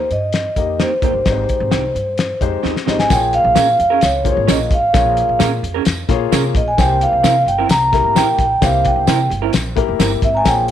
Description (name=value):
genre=uptempo 1960s-style soul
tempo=130 BPM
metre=4/4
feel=straight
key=unclear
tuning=A4 = 439 Hz
part: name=vibraphone with soft mallets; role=melody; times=0.0-10.6 s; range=C5 to Bb5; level=-16 LUFS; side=right 1 dB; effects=none
part: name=dark concert grand piano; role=accompaniment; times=0.0-10.7 s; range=Ab3 to Eb5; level=-22 LUFS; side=left 13 dB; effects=none
part: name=upright bass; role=bass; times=0.0-10.7 s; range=F1 to C3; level=-22 LUFS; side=right 1 dB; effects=none
part: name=cloth-damped thuddy drum kit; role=drums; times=0.1-10.7 s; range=hi-hat, kick drum, snare drum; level=-18 LUFS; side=left 2 dB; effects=none
part: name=electric guitar through a small old amp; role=stabs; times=0.8-10.1 s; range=Bb3 to Bb4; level=-22 LUFS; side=right 15 dB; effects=none
part: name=tambourine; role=percussion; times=3.1-10.6 s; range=none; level=-30 LUFS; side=right 16 dB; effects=none
room=light reverb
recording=1960s-style stereo with parts hard left and right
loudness=-13 LUFS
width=side -10 dB against mid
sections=0.0-3.1 A section; 3.1-10.7 B section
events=drum fill 2.6-3.1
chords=0.0 Cm7; 1.3 Abmaj7; 3.1 Bbm7; 6.8 C7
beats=0.34 0.80 | 1.26 1.72 2.18 2.64 | 3.10 3.56 4.02 4.48 | 4.94 5.40 5.86 6.32 | 6.78 7.24 7.70 8.16 | 8.62 9.08 9.54 10.00 | 10.46